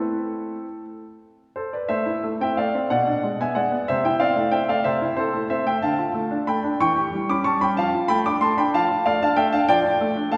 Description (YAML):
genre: classical-period piano sonatina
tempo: 62 BPM (dotted quarters)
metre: 6/8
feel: rubato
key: A minor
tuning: A4 = 440 Hz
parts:
  - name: bright concert grand piano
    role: solo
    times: 0.0-10.4 s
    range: B2 to D6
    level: -22 LUFS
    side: equal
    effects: none
room: wet concert hall reverb, RT60 1.9 s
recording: heard from further back in the room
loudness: -22 LUFS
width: mono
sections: 0.0-1.9 A section; 1.9-10.4 B section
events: none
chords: 0.0 Am; 2.9 G#dim/B; 3.9 Am/C; 5.8 Dm; 6.8 C#dim/E; 7.8 Dm/F